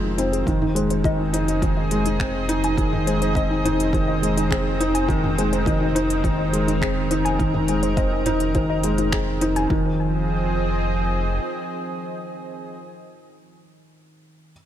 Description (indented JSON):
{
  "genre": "piano and strings electronica",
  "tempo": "104 BPM",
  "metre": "4/4",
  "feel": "straight",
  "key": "F minor",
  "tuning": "A4 = 444 Hz",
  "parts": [
    { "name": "lush unison pad", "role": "sustained chords", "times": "0.0-12.8 s", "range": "Eb3 to Eb5", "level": "-27 LUFS", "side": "right 1 dB", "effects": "chorus" },
    { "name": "warbly dusty pluck", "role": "arpeggios", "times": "0.0-10.0 s", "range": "Eb4 to Ab5", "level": "-28 LUFS", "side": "left 3 dB", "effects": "chorus, sidechain pumping, ping-pong delay" },
    { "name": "felt-muted upright piano", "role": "riff", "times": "0.0-14.5 s", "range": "Eb3 to Eb4", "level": "-23 LUFS", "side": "equal", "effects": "ping-pong delay" },
    { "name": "round analog bass", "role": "bass", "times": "0.0-11.4 s", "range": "F1", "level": "-26 LUFS", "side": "equal", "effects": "sidechain pumping" },
    { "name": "organic electronic drum kit", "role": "drums", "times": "0.2-9.7 s", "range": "finger snaps, hi-hat, toms", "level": "-31 LUFS", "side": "equal", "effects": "none" },
    { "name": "electronic kick drum", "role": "drums", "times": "0.5-9.8 s", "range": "none", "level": "-25 LUFS", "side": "equal", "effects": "overdrive" }
  ],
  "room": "light reverb",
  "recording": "none",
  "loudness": "-19 LUFS",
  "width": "side -11 dB against mid",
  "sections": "0.0-9.7 A section; 9.7-12.0 B section",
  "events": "drop 0.0-9.7",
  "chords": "0.0 Fm7"
}